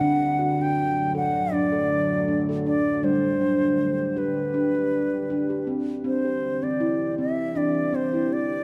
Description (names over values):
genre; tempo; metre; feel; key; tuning
world meditative, meditative tuned percussion; 80 BPM; 4/4; swing 53% on 16ths; C lydian; A4 = 439 Hz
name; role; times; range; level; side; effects
reedy bansuri; melody; 0.0-8.6 s; B4 to G5; -28 LUFS; equal; diffuse ambient delay
deep dark ambient pad; sustained chords; 0.0-8.6 s; D3 to G4; -32 LUFS; equal; chorus, built-in reverb
steel tongue drum; arpeggios; 0.0-8.5 s; D3 to A4; -27 LUFS; equal; diffuse ambient delay
room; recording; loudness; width
wet echo chamber reverb, RT60 1.7 s, small room ambience; none; -24 LUFS; mono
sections
0.0-6.0 A section; 6.0-8.6 B section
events
none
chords
0.0 D; 3.0 G; 6.0 C